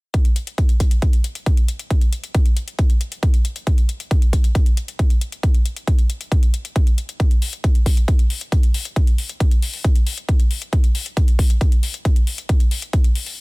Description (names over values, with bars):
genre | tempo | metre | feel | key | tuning
trance | 136 BPM | 4/4 | straight | none | none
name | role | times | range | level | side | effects
electronic hi-hat | drums | 0.1-13.4 s | none | -31 LUFS | left 5 dB | none
electronic kick drum | drums | 0.1-13.0 s | none | -15 LUFS | equal | none
room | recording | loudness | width
digital ambience | dense, heavily limited modern master | -16 LUFS | side -27 dB against mid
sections
0.1-13.4 A section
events
none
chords
none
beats
| 0.14 0.58 1.02 1.46 | 1.91 2.35 2.79 3.23 | 3.67 4.11 4.55 4.99 | 5.43 5.88 6.32 6.76 | 7.20 7.64 8.08 8.52 | 8.96 9.40 9.85 10.29 | 10.73 11.17 11.61 12.05 | 12.49 12.93